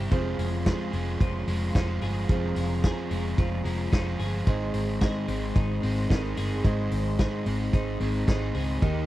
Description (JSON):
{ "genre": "jangly indie pop", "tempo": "110 BPM", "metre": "4/4", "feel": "straight", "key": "Ab major", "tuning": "A4 = 439 Hz", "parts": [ { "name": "crunchy overdriven guitar", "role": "accompaniment", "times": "0.0-9.1 s", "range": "F2 to Ab4", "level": "-33 LUFS", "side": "right 3 dB", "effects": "none" }, { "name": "dark upright piano", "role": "accompaniment", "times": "0.0-9.1 s", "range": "Eb4 to C5", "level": "-35 LUFS", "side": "right 8 dB", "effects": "none" }, { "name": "hollow soft pad", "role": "sustained chords", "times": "0.0-9.1 s", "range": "G4 to C6", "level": "-42 LUFS", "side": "equal", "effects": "ensemble chorus" }, { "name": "twelve-string electric guitar", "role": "arpeggios", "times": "0.0-9.1 s", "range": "F2 to Ab4", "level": "-32 LUFS", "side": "left 5 dB", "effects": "warbly pitch drift" }, { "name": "vintage muted picked electric bass", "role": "bass", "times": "0.0-9.0 s", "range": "F1 to Eb2", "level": "-30 LUFS", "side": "equal", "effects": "none" }, { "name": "vintage drum kit", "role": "drums", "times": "0.1-8.9 s", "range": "hi-hat, kick drum, ride cymbal, snare drum", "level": "-26 LUFS", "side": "equal", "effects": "none" } ], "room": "little or no reverb", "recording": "dry, close 1970s-style studio recording", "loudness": "-24 LUFS", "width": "side -15 dB against mid", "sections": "0.0-9.1 A section", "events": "none", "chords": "0.1 Fm; 4.5 Ab" }